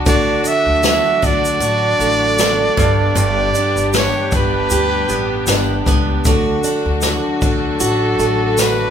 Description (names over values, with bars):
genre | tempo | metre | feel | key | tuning
acoustic pop | 78 BPM | 4/4 | swing 55% on 16ths | D major | A4 = 440 Hz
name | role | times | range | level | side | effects
picked steel-string acoustic guitar | accompaniment | 0.0-8.9 s | G2 to G4 | -18 LUFS | right 1 dB | none
muted studio string section | sustained chords | 0.0-8.9 s | F#3 to G4 | -25 LUFS | left 3 dB | none
warm trumpet | melody | 0.1-8.9 s | A4 to E5 | -18 LUFS | right 2 dB | none
upright bass | bass | 0.1-8.8 s | G1 to D2 | -22 LUFS | left 1 dB | none
jazz brush drum kit | drums | 0.1-8.8 s | kick drum, shaker, snare drum | -19 LUFS | left 1 dB | none
tambourine | percussion | 0.8-8.8 s | none | -29 LUFS | left 4 dB | none
room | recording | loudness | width
light reverb | band playing live in one room | -13 LUFS | side -8 dB against mid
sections
0.0-8.9 A section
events
none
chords
0.1 D; 2.8 G; 6.3 D